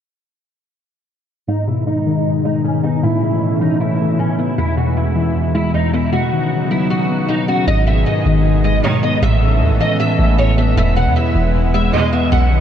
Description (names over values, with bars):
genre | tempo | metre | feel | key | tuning
hip hop | 155 BPM | 4/4 | half-time | G# phrygian | A4 = 440 Hz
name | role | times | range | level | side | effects
picked steel-string acoustic guitar | melody | 1.5-12.6 s | C#4 to F#5 | -20 LUFS | equal | ensemble chorus, low-pass filter, ping-pong delay
muted felt-like synth keys | accompaniment | 1.5-12.6 s | E2 to C#4 | -17 LUFS | left 2 dB | chorus, low-pass filter
warm analog pad | sustained chords | 1.5-12.6 s | B2 to B4 | -22 LUFS | right 1 dB | chorus, low-pass filter
warm 808-style bass | bass | 7.7-12.6 s | E1 to E2 | -16 LUFS | equal | none
rich symphonic string section | stabs | 8.8-9.2, 11.9-12.3 s | B1 to G#3 | -25 LUFS | right 3 dB | none
room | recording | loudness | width
wet huge ambient reverb, RT60 8.8 s | dreamy mix soaked in reverb | -14 LUFS | side -9 dB against mid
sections
1.5-7.7 A section; 7.7-12.6 B section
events
filter sweep 1.5-7.7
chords
1.5 G#m; 3.0 Aadd9; 4.6 E; 6.1 Badd9; 7.7 G#m; 9.2 Aadd9; 10.8 E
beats
| 1.48 1.87 2.25 2.64 | 3.03 3.42 3.80 4.19 | 4.58 4.96 5.35 5.74 | 6.13 6.51 6.90 7.29 | 7.67 8.06 8.45 8.84 | 9.22 9.61 10.00 10.38 | 10.77 11.16 11.55 11.93 | 12.32